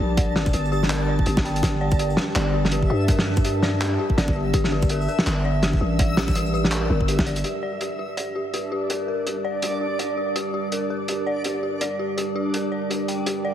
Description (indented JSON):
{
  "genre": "half-time drum and bass",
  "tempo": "165 BPM",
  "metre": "4/4",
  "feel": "swing 58% on 16ths, half-time",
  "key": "G dorian",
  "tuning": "A4 = 439 Hz",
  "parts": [
    { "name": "deep dark ambient pad", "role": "sustained chords", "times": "0.0-13.5 s", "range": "G3 to A5", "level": "-32 LUFS", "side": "right 2 dB", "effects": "chorus, built-in reverb, sidechain pumping" },
    { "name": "dark detuned synth bell", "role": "arpeggios", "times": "0.0-13.5 s", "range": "G4 to G5", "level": "-27 LUFS", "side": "left 2 dB", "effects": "chorus, phaser, low-pass filter, tape echo" },
    { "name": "growling 808-style bass", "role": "bass", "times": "0.0-7.4 s", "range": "G1 to G2", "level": "-23 LUFS", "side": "equal", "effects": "none" },
    { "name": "backwards swelling texture", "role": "texture", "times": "0.0-13.5 s", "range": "D4 to A5", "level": "-31 LUFS", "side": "right 1 dB", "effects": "built-in reverb" },
    { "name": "crunchy breakbeat drum kit", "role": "drums", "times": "0.2-13.3 s", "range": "handclaps, hi-hat, shaker, snare drum", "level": "-26 LUFS", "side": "equal", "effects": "none" },
    { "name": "electronic kick drum", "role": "drums", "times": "0.2-7.2 s", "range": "none", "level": "-22 LUFS", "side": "equal", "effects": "none" }
  ],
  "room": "light reverb",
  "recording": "heavily compressed radio sound, multiband compression",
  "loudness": "-20 LUFS",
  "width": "side -10 dB against mid",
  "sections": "0.0-7.4 A section; 7.4-13.5 B section",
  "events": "drop 0.0-7.4",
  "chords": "0.0 G5",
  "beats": "| 0.17 0.54 0.90 1.26 | 1.63 1.99 2.36 2.72 | 3.08 3.45 3.81 4.17 | 4.54 4.90 5.26 5.63 | 5.99 6.36 6.72 7.08 | 7.45 7.81 8.17 8.54 | 8.90 9.27 9.63 9.99 | 10.36 10.72 11.08 11.45 | 11.81 12.17 12.54 12.90 | 13.27"
}